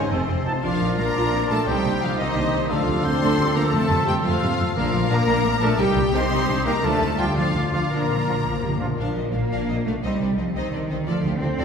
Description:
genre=cinematic, heroic adventure film score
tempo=116 BPM (dotted quarters)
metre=6/8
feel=straight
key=Bb major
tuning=A4 = 442 Hz
part: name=rich studio violin section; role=melody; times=0.0-11.6 s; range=C5 to C6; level=-28 LUFS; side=left 4 dB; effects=none
part: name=mellow clarinet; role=second line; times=0.0-8.8 s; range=C4 to C5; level=-30 LUFS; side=left 2 dB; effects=none
part: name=warm oboe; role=second line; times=0.0-8.8 s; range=F4 to C5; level=-31 LUFS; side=equal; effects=none
part: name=warm symphonic violin section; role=second line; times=0.0-11.6 s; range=C4 to Eb5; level=-35 LUFS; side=left 2 dB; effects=none
part: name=warm studio viola section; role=accompaniment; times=0.0-11.6 s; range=Eb3 to A4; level=-29 LUFS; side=right 1 dB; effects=none
part: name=mellow French horn section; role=sustained chords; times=0.0-11.6 s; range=Eb3 to A4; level=-34 LUFS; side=left 3 dB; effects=none
part: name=concert harp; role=arpeggios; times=0.0-11.6 s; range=F2 to Bb5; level=-28 LUFS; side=left 4 dB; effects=none
part: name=flute section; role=second line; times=0.1-8.8 s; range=C5 to Eb6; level=-36 LUFS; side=left 1 dB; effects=none
part: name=rich symphonic cello section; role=bass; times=0.1-11.6 s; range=C3 to C4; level=-27 LUFS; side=right 2 dB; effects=none
part: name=rich symphonic double bass section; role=bass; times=0.1-11.6 s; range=F1 to F2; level=-27 LUFS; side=right 1 dB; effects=none
part: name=bright trombone section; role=sustained chords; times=0.5-8.9 s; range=Eb3 to Eb4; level=-32 LUFS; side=right 2 dB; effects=none
part: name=mellow trumpet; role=stabs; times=0.5-8.9 s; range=F4 to A5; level=-31 LUFS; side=right 2 dB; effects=none
part: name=timpani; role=percussion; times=3.7-5.2, 7.9-8.9 s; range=F2 to Bb2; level=-34 LUFS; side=equal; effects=none
room=wet scoring stage reverb, RT60 1.5 s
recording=heard from further back in the room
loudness=-19 LUFS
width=side -6 dB against mid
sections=0.6-9.0 A section; 9.0-11.6 B section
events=timpani fill 7.9-9.0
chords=0.1 F7; 0.6 Bb; 1.7 Cm; 2.7 Dm; 3.7 F; 4.8 Bb; 5.8 Cm; 6.8 Dm; 7.9 Bb; 10.0 Cm; 11.1 Dm

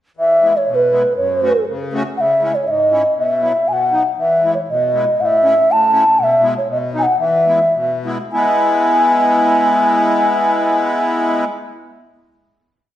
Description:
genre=alpine folk, alpine dance band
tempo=100-122 BPM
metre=2/4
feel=rubato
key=E major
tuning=A4 = 440 Hz
part: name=mellow bass bansuri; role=melody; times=0.2-11.4 s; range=B4 to A5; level=-14 LUFS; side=equal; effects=none
part: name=accordion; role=accompaniment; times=0.2-11.4 s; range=F#2 to F#4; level=-20 LUFS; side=left 1 dB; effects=light tremolo tuning
room=wet recital hall reverb, RT60 1.4 s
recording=none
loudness=-13 LUFS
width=side -12 dB against mid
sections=0.1-8.3 A section; 8.3-10.7 final chord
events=slowing down 6.2-8.3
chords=0.1 E; 1.2 F#m; 2.1 C#m; 3.2 Bsus4; 3.7 B; 4.2 E; 5.2 A; 6.2 E/B; 6.7 B; 7.2 E

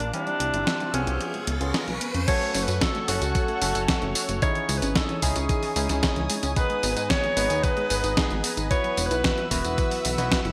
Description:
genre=italo disco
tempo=112 BPM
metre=4/4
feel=straight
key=F# dorian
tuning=A4 = 441 Hz
part: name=warm alto saxophone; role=melody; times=0.0-10.5 s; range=Db4 to C#5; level=-31 LUFS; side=equal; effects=digital delay
part: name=lush unison pad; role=sustained chords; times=0.0-10.5 s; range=A4 to E6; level=-37 LUFS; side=equal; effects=chorus, phaser, vintage 12-bit sampler grit
part: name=warbly dusty pluck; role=arpeggios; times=0.0-10.5 s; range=D#3 to B4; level=-37 LUFS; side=equal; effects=chorus, digital delay
part: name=barky tine electric piano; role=stabs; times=0.0-10.4 s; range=G3 to B4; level=-34 LUFS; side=equal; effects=low-pass filter
part: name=chorused synth bass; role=bass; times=0.0-10.5 s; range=E1 to G#2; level=-31 LUFS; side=equal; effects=none
part: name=clean 12-bit digital drum machine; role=drums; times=0.0-10.5 s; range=crash cymbal, hi-hat, snare drum, tambourine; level=-30 LUFS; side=equal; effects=gated reverb
part: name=riser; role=sound effects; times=0.2-2.3 s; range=none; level=-38 LUFS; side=equal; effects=none
part: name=electronic kick drum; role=drums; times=2.3-10.4 s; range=none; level=-29 LUFS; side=equal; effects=none
room=moderate plate reverb, RT60 1.9 s, digital ambience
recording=bright 1980s-style digital production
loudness=-25 LUFS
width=mono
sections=0.0-2.3 A section; 2.3-10.5 B section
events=riser 0.2-2.3; filter sweep on analog synth pad 0.0-2.3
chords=0.1 C; 1.2 Db7; 2.3 F#m; 4.4 C#madd9; 6.6 G#m; 8.7 Esus2

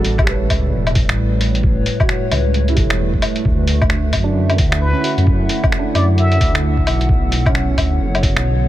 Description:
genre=future garage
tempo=132 BPM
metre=4/4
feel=swing 62% on 16ths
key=unclear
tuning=A4 = 439 Hz
part: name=felt-muted upright piano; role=accompaniment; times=0.0-8.7 s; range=C#4 to C#5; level=-26 LUFS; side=right 5 dB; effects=sidechain pumping, digital delay
part: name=warbly tape-like pad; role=sustained chords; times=0.0-8.7 s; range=A2 to F#5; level=-22 LUFS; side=right 1 dB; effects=chorus, built-in reverb, sidechain pumping
part: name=dark detuned saw bass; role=bass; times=0.0-8.7 s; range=E1 to F#2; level=-17 LUFS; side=equal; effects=sidechain pumping
part: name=lo-fi sampler-style drum kit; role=drums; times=0.0-8.4 s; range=finger snaps, hi-hat, woodblock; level=-22 LUFS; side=left 2 dB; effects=none
part: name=electronic kick drum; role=drums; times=0.2-8.3 s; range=none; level=-18 LUFS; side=equal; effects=none
part: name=trumpet with plunger mute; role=melody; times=4.8-6.5 s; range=B4 to E5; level=-26 LUFS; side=left 1 dB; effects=dub echo
room=digital ambience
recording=none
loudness=-14 LUFS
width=side -14 dB against mid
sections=0.0-8.7 A section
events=none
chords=0.0 A7; 3.4 Dadd9; 7.1 Bmadd9

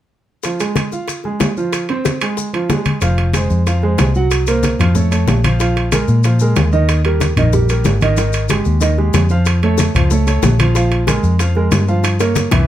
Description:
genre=latin, salsa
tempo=186 BPM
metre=4/4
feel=straight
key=F minor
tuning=A4 = 437 Hz
part: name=clear upright piano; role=accompaniment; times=0.4-12.7 s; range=Eb3 to Gb5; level=-18 LUFS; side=right 3 dB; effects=none
part: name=bongos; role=percussion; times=0.4-12.6 s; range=none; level=-24 LUFS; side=left 7 dB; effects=none
part: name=maracas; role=percussion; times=0.4-12.7 s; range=none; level=-29 LUFS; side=left 8 dB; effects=none
part: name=timbales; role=percussion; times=0.4-12.7 s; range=none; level=-22 LUFS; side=right 4 dB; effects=none
part: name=congas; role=percussion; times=0.5-12.7 s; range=none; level=-20 LUFS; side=left 2 dB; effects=none
part: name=vintage muted fingered electric bass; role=bass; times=3.0-12.7 s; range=F1 to Bb2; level=-14 LUFS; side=equal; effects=none
room=light reverb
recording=none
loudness=-13 LUFS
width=side -12 dB against mid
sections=0.4-3.0 A section; 3.0-12.7 B section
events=drum fill 12.0-12.7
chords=0.4 Fm; 4.3 Gbmaj7#11/C; 4.9 Faug; 5.6 Bb5; 6.9 Eb; 8.2 Ab5; 9.5 Faug; 10.7 Bb5; 12.0 Gm7b5

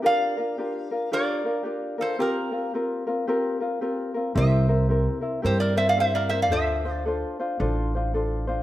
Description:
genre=Hawaiian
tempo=111 BPM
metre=4/4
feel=swing 62% on 8ths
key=unclear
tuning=A4 = 441 Hz
part: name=ukulele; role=accompaniment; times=0.0-8.6 s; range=C4 to C5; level=-26 LUFS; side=left 2 dB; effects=none
part: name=metal-body resonator slide guitar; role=melody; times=0.1-7.0 s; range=G4 to F5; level=-25 LUFS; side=right 1 dB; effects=none
part: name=upright bass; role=bass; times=4.4-8.6 s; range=A1 to G2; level=-24 LUFS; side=right 1 dB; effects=none
room=moderate recital hall reverb, RT60 1.4 s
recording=none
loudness=-22 LUFS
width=side -14 dB against mid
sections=0.0-8.6 A section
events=none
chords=0.0 Gm7; 2.2 C7sus4; 4.4 C7; 6.5 Dm7

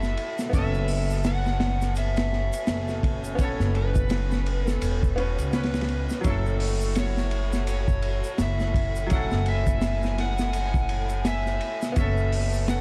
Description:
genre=trip hop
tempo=84 BPM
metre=4/4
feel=swing 59% on 16ths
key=F# minor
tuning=A4 = 441 Hz
part: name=overdriven slide guitar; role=melody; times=0.0-12.8 s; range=A4 to F#5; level=-35 LUFS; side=equal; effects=vintage 12-bit sampler grit, dub echo
part: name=bright upright piano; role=accompaniment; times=0.0-12.8 s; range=F#3 to B4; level=-36 LUFS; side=equal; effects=harmonic tremolo, tape echo
part: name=warm studio violin section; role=sustained chords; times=0.0-12.8 s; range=A3 to G#5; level=-38 LUFS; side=equal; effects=none
part: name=upright bass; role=bass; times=0.0-12.8 s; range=E1 to C#2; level=-29 LUFS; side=equal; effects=none
part: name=crunchy breakbeat drum kit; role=drums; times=0.0-12.8 s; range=hi-hat, kick drum, ride cymbal, snare drum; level=-30 LUFS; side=equal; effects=none
part: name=egg shaker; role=percussion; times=0.0-12.8 s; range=none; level=-48 LUFS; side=equal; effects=none
room=small room ambience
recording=dark, warm production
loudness=-25 LUFS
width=mono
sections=0.0-12.8 A section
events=none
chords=0.0 F#m7; 0.5 Aadd9/F#; 6.2 F#m7; 12.0 Aadd9/F#

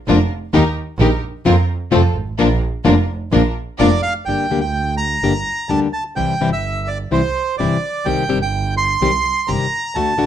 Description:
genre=tango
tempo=127 BPM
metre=4/4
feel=rubato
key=Bb major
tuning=A4 = 440 Hz
part: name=nylon-string guitar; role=accompaniment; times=0.1-10.3 s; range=C3 to G4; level=-17 LUFS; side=left 5 dB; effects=none
part: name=rich studio string section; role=stabs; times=0.1-4.0 s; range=C4 to Bb4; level=-24 LUFS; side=right 1 dB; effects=none
part: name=rich double bass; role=bass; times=0.1-10.3 s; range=F1 to F2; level=-20 LUFS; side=right 3 dB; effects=none
part: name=bandoneon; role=melody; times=3.8-10.3 s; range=C5 to C6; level=-20 LUFS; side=right 4 dB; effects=plate reverb
room=light reverb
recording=dark, warm production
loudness=-15 LUFS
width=side -10 dB against mid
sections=0.0-4.3 A section; 4.3-10.3 B section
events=none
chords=0.0 Bb; 0.5 Eb; 1.5 Fsus4; 1.9 F; 2.4 Bb; 4.3 Gm; 6.2 C; 8.1 Cm

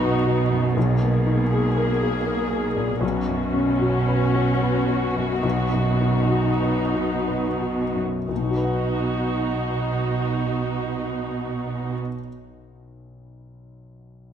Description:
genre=cinematic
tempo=57-81 BPM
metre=3/4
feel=rubato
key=B major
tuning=A4 = 440 Hz
part: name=warm grand piano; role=accompaniment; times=0.0-14.3 s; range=B1 to F#5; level=-25 LUFS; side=left 3 dB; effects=none
part: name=warm studio viola section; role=accompaniment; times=0.0-12.0 s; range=A#3 to G#4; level=-26 LUFS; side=equal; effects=none
part: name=rich studio cello section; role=bass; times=0.0-11.9 s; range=B2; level=-24 LUFS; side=right 4 dB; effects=none
room=moderate scoring stage reverb, RT60 1.7 s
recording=none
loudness=-20 LUFS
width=side -9 dB against mid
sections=0.0-8.3 A section; 8.3-11.3 B section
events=slowing down 1.9-8.3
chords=0.0 B; 0.8 G#sus2/B; 3.0 F#sus4/B; 5.4 B

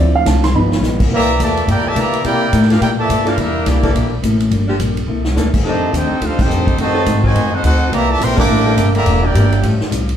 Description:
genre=jazz, big band swing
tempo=211 BPM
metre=4/4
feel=swing 61% on 8ths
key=unclear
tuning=A4 = 437 Hz
part: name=hollow-body jazz guitar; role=accompaniment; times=0.0-10.1 s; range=F2 to B4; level=-23 LUFS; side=left 4 dB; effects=none
part: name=warm baby grand piano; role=accompaniment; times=0.0-1.1 s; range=F3 to C6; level=-17 LUFS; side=right 2 dB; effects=none
part: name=upright bass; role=bass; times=0.0-10.2 s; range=E1 to D3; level=-16 LUFS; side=equal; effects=none
part: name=swinging big-band drum kit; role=drums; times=0.3-10.1 s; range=crash cymbal, hi-hat, kick drum, ride cymbal, snare drum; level=-21 LUFS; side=equal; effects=none
part: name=clear trombone section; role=second line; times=1.1-9.8 s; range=Bb2 to G4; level=-20 LUFS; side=right 1 dB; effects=none
part: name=bright trumpet section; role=melody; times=1.2-9.8 s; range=Bb3 to D6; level=-19 LUFS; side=right 2 dB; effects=none
part: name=warm saxophone section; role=sustained chords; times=2.0-10.0 s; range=E3 to A4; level=-24 LUFS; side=equal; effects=none
room=wet large studio reverb, RT60 1.0 s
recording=heard from further back in the room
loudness=-12 LUFS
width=side -9 dB against mid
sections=0.0-1.1 A section; 1.1-10.2 B section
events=grand piano solo 0.0-1.1; drum fill 0.5, 5.1; band accent 6.4, 8.3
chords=0.0 Dm7; 0.5 G7alt; 1.1 C13; 4.5 Gm7; 5.1 C13; 5.6 F13; 6.8 F#dim7; 7.9 C13; 9.1 Em7b5; 9.6 A7alt

